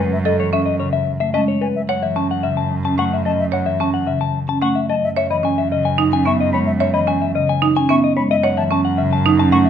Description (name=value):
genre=classical, minimalist pattern music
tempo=110 BPM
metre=3/4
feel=straight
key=F# dorian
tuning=A4 = 438 Hz
part: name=clean electric guitar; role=melody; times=0.0-9.7 s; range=B4 to A5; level=-20 LUFS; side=left 8 dB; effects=none
part: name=marimba with medium mallets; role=accompaniment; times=0.0-9.7 s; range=C#3 to C#4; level=-21 LUFS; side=left 1 dB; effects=none
part: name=concert flute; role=arpeggios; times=0.0-9.6 s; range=E5 to C#6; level=-26 LUFS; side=left 2 dB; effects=none
part: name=warm cello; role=bass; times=0.0-9.7 s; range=F#2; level=-23 LUFS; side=right 4 dB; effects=none
part: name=buzzing marimba with hard mallets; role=arpeggios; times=0.3-9.7 s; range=C#4 to C#5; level=-21 LUFS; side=right 7 dB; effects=none
room=moderate large studio reverb, RT60 0.8 s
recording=none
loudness=-15 LUFS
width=side -8 dB against mid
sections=0.0-9.7 A section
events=none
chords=0.0 Amaj7#11/F#; 1.8 F#m7; 5.0 Emaj7/F#; 8.3 F#m7